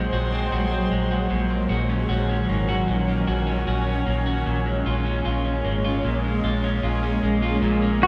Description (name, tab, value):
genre	dream pop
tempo	76 BPM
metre	4/4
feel	straight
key	Bb minor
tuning	A4 = 441 Hz
part	shimmering ambient pad	sustained chords	0.0-8.1 s	Eb3 to C5	-27 LUFS	equal	chorus, built-in reverb, shimmer reverb
part	electric guitar at the edge of break-up	arpeggios	0.0-8.1 s	Bb2 to Gb4	-29 LUFS	equal	lush chorus, shimmer reverb, delay
part	vintage muted fingered electric bass	bass	0.0-8.1 s	Ab1 to Bb1	-28 LUFS	equal	none
part	pedal steel guitar	melody	8.0-8.1 s	Gb4	-17 LUFS	equal	none
room	wet recital hall reverb, RT60 1.7 s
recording	none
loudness	-23 LUFS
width	mono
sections	0.0-7.6 A section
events	none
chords	0.0 Ab7; 1.3 Ebm7; 4.5 Bbm7